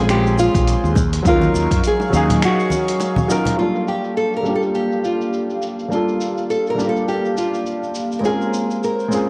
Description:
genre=sunset chillout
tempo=103 BPM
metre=4/4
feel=swing 57% on 16ths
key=G minor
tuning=A4 = 440 Hz
part: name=nylon-string guitar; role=melody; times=0.0-9.3 s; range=F4 to Bb4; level=-24 LUFS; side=equal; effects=cassette tape, analog delay
part: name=dark grand piano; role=accompaniment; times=0.0-9.3 s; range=Gb3 to F5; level=-23 LUFS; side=equal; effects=low-pass filter, cassette tape, analog delay
part: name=airy breathy pad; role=sustained chords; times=0.0-9.3 s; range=Gb3 to Db6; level=-29 LUFS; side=equal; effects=chorus, cassette tape
part: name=mellow fretless electric bass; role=bass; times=0.0-2.4 s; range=Bb1 to Gb2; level=-22 LUFS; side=equal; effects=none
part: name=dusty soul sampler-style drum kit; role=drums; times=0.1-9.3 s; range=finger snaps, hi-hat, shaker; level=-33 LUFS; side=equal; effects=low-pass filter on hats, cassette tape, low-pass filter on perc, low-pass filter on snare, low-pass filter on room
part: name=bongos and congas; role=percussion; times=0.4-3.6 s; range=none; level=-26 LUFS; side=equal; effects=none
part: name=electronic kick drum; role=drums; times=0.5-1.8 s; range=none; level=-22 LUFS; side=equal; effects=overdrive, cassette tape
room=moderate spring reverb, RT60 2.4 s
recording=home recording on cassette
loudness=-19 LUFS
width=mono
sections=0.0-3.6 A section; 3.6-9.3 B section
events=break 2.4-3.6; filter sweep on analog synth pad 3.6-9.3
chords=0.0 Bbm9; 1.0 Ebm9; 3.6 Gm9; 8.2 Bbm9

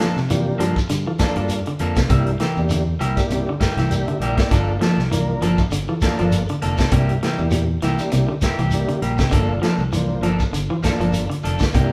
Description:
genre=afrobeat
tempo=100 BPM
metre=4/4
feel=swing 55% on 16ths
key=G dorian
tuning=A4 = 439 Hz
part: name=electric guitar at the edge of break-up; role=arpeggios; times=0.0-11.9 s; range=Bb2 to F3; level=-26 LUFS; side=equal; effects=spring reverb
part: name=electric guitar at the edge of break-up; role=stabs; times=0.0-11.9 s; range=F3 to A4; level=-29 LUFS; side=equal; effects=none
part: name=vintage drum kit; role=drums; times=0.0-11.9 s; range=hi-hat, kick drum, snare drum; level=-24 LUFS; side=equal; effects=none
part: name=fingered electric bass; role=bass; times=0.2-11.9 s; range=F1 to C3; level=-26 LUFS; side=equal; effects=none
part: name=shekere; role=percussion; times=0.2-11.9 s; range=none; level=-32 LUFS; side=equal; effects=none
part: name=overdriven combo organ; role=accompaniment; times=0.3-11.9 s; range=F3 to G5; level=-30 LUFS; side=equal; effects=none
room=moderate large studio reverb, RT60 1.1 s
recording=band playing live in one room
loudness=-20 LUFS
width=mono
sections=0.0-11.9 A section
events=transistor combo organ fill 3.6-4.5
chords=0.0 Gm9; 2.1 C7; 4.5 Gm9; 6.9 C7; 9.3 Gm9

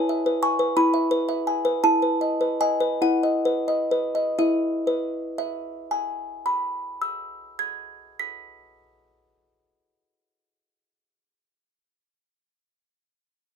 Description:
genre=classical, lullaby for music box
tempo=42-61 BPM (dotted quarters)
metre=6/8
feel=straight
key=E major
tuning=A4 = 440 Hz
part: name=music box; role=solo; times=0.0-11.5 s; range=E4 to B6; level=-22 LUFS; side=equal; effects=none
room=moderate studio reverb, RT60 0.6 s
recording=none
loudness=-22 LUFS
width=side -7 dB against mid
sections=0.0-4.4 A section; 4.4-10.1 B section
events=slowing down 0.0-4.4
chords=0.0 E; 1.8 B7/E; 4.4 E

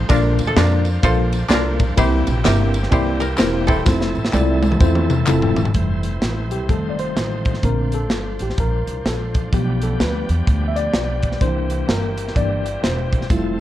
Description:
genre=uptempo gospel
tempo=127 BPM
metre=4/4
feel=swing 62% on 8ths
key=F major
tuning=A4 = 438 Hz
part: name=koto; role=melody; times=0.0-6.3 s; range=C4 to E5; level=-23 LUFS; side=equal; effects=none
part: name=bright tonewheel organ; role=sustained chords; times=0.0-13.6 s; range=E3 to C5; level=-30 LUFS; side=right 1 dB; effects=fast rotary speaker, overdrive
part: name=upright bass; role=bass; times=0.0-13.6 s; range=E1 to F2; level=-21 LUFS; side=equal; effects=none
part: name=mellow tine electric piano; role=accompaniment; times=0.1-13.6 s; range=Bb2 to F5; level=-23 LUFS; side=left 2 dB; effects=overdrive, medium stereo tremolo
part: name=crisp fusion drum kit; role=drums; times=0.1-13.4 s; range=hi-hat, kick drum, ride cymbal, snare drum, toms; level=-20 LUFS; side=equal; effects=none
part: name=tambourine and handclaps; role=percussion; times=0.1-5.7, 13.3-13.4 s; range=none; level=-31 LUFS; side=left 1 dB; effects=none
room=light reverb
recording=worn, warbling old tape, cassette tape, warbly pitch drift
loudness=-16 LUFS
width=side -13 dB against mid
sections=0.0-5.7 A section; 5.7-13.6 B section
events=drum fill 3.9-5.7; tine electric piano solo 5.7-13.6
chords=0.1 Bbmaj7; 2.0 C7; 3.9 Fmaj7; 6.7 F7; 7.6 Bbmaj7; 9.5 G7/B; 11.4 C7

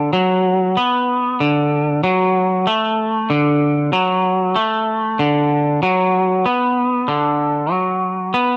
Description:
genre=rock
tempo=63 BPM (dotted quarters)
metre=6/8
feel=straight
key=D major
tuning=A4 = 440 Hz
part: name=twangy electric guitar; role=solo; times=0.0-8.6 s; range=D3 to B3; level=-17 LUFS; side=equal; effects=none
room=little or no reverb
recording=dry, close 1970s-style studio recording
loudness=-17 LUFS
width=mono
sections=0.0-8.6 A section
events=none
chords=none

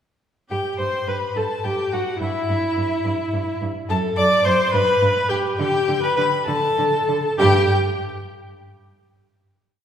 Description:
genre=quick classical-period movement for string quartet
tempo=64-72 BPM (dotted quarters)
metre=6/8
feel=rubato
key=unclear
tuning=A4 = 440 Hz
part: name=bright violin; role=melody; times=0.5-7.7 s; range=E5 to D6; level=-25 LUFS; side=left 3 dB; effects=none
part: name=rich violin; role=second line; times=0.5-7.7 s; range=E4 to D5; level=-25 LUFS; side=left 2 dB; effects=none
part: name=clear viola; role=accompaniment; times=0.5-7.7 s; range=E4 to D5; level=-22 LUFS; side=right 1 dB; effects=none
part: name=rich cello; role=bass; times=0.5-7.7 s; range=F#2 to D3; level=-25 LUFS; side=right 2 dB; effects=none
room=wet concert hall reverb, RT60 1.8 s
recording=recorded in a church or concert hall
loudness=-18 LUFS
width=side -8 dB against mid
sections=0.5-7.4 A section; 7.4-9.2 final note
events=none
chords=0.5 Em/G; 3.9 D7; 4.7 G; 5.6 G5/D; 7.4 N.C.

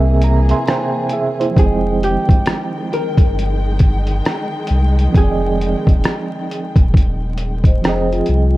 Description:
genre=lo-fi hip hop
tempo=67 BPM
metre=4/4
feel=swing 60% on 16ths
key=F minor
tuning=A4 = 440 Hz
part: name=bright reed electric piano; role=accompaniment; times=0.0-8.6 s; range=C3 to C6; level=-21 LUFS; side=right 3 dB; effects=fast tremolo, cassette tape
part: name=warm studio string section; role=sustained chords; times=0.0-8.6 s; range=Eb3 to G5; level=-26 LUFS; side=left 2 dB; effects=none
part: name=warm sub bass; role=bass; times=0.0-8.6 s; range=Eb1 to C2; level=-17 LUFS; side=equal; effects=none
part: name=lo-fi sampler-style drum kit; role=drums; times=0.2-8.5 s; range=hi-hat, kick drum, rim click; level=-14 LUFS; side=equal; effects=none
part: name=hollow-body jazz guitar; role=melody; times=1.6-6.3 s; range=G4 to Bb4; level=-23 LUFS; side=right 1 dB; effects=tape echo
part: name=vibraphone with soft mallets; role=second line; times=7.7-8.6 s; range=F4 to Eb5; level=-21 LUFS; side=left 4 dB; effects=none
room=digital ambience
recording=dark, warm production, vinyl crackle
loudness=-13 LUFS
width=side -17 dB against mid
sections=0.0-8.6 A section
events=reed electric piano fill 0.0-1.6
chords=0.0 C7b13; 1.6 Fm9

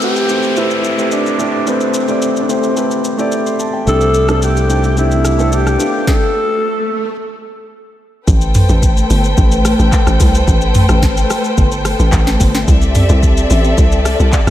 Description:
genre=amapiano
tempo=109 BPM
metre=4/4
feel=straight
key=A minor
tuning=A4 = 440 Hz
part: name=breathy alto saxophone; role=melody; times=0.0-7.1 s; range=A3 to A4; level=-17 LUFS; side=equal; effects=diffuse ambient delay
part: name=warm grand piano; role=accompaniment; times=0.0-6.1 s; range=A3 to C6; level=-16 LUFS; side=left 1 dB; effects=none
part: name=afro-pop drum kit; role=drums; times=0.0-14.5 s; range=handclaps, hi-hat, kick drum, rim click, shaker, snare drum, toms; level=-15 LUFS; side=equal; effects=none
part: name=downlifter and swell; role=sound effects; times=0.0-7.2 s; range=none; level=-24 LUFS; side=equal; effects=none
part: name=modern bright fingered electric bass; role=bass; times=3.9-5.8 s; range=C2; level=-14 LUFS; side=equal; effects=none
part: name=dark studio string section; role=sustained chords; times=8.3-14.5 s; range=A3 to G5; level=-16 LUFS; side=left 1 dB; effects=sidechain pumping
part: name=hollow log drum bass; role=bass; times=8.3-14.5 s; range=G1 to C2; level=-13 LUFS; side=equal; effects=none
room=moderate lush hall reverb, RT60 2.0 s, small room ambience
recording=dreamy mix soaked in reverb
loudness=-11 LUFS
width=side -12 dB against mid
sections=0.0-8.3 A section; 8.3-14.5 B section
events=swell 6.0-8.3; stop 6.1-8.3; drop 8.3-14.5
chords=0.0 Am7; 3.9 C69; 5.8 G9; 8.3 Am7; 12.7 C69

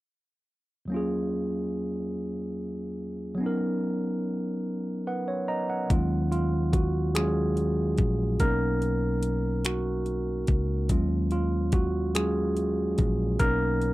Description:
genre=slow six-eight R&B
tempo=48 BPM (dotted quarters)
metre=6/8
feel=straight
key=Eb minor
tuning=A4 = 440 Hz
part: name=barky tine electric piano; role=accompaniment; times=0.9-13.9 s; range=Eb2 to A#5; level=-27 LUFS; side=right 1 dB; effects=overdrive
part: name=fingered electric bass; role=bass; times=5.9-13.9 s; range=Bb1 to Eb2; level=-28 LUFS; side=equal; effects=none
part: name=smooth R&B drum kit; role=drums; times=5.9-13.9 s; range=finger snaps, hi-hat, kick drum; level=-26 LUFS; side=equal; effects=none
room=little or no reverb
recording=dry, close 1970s-style studio recording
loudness=-25 LUFS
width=side -17 dB against mid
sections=0.9-5.9 A section; 5.9-13.9 B section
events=tine electric piano fill 4.7-5.9; tine electric piano solo 5.9-13.9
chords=0.9 Ebm11; 3.4 Bmaj7; 5.9 Ebm11; 8.4 Bmaj7; 10.9 Ebm11; 13.4 Bmaj7

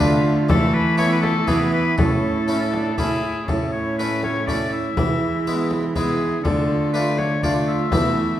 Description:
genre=classical, renaissance-style consort dance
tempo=122 BPM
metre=3/4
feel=straight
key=A major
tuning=A4 = 440 Hz
part: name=bright oboe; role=melody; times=0.0-8.4 s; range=G#4 to E5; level=-26 LUFS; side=left 4 dB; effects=none
part: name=tenor recorder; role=second line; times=0.0-8.4 s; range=E4 to F4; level=-26 LUFS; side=right 5 dB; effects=none
part: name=harpsichord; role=accompaniment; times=0.0-8.4 s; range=A2 to F4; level=-25 LUFS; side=left 1 dB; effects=none
part: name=warm viola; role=accompaniment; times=0.0-8.4 s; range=G#3 to E4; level=-27 LUFS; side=equal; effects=none
part: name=rich cello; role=bass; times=0.0-8.4 s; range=A2 to E3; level=-24 LUFS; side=right 1 dB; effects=none
part: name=frame drum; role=percussion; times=0.0-8.2 s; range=none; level=-24 LUFS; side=left 1 dB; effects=none
room=wet recital hall reverb, RT60 1.3 s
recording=heard from further back in the room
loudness=-18 LUFS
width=side -12 dB against mid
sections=0.0-3.5 A section; 3.5-8.4 B section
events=none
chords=0.5 Esus4; 1.5 E; 2.0 A; 5.0 E; 6.4 Dm

